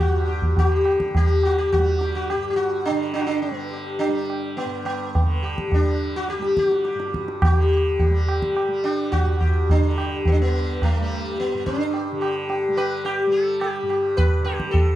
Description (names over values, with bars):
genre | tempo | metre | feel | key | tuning
indian classical, Hindustani | 106 BPM | 4/4 | straight | G raga hamsadhwani | A4 = 440 Hz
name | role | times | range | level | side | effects
sitar | melody | 0.0-15.0 s | A3 to B4 | -22 LUFS | left 1 dB | tape echo
tanpura | drone | 0.0-15.0 s | G2 to G3 | -32 LUFS | right 2 dB | none
tabla | percussion | 0.3-14.9 s | none | -22 LUFS | right 1 dB | none
room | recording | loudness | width
little or no reverb | dry, close 1970s-style studio recording | -19 LUFS | side -13 dB against mid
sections
0.0-15.0 A section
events
speeding up 0.0-15.0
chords
none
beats
| 0.57 1.15 1.72 2.29 | 2.87 3.44 4.01 4.58 | 5.16 5.72 6.29 6.86 | 7.43 8.00 8.56 9.13 | 9.69 10.26 10.82 11.38 | 11.94 12.50 13.06 13.62 | 14.18 14.73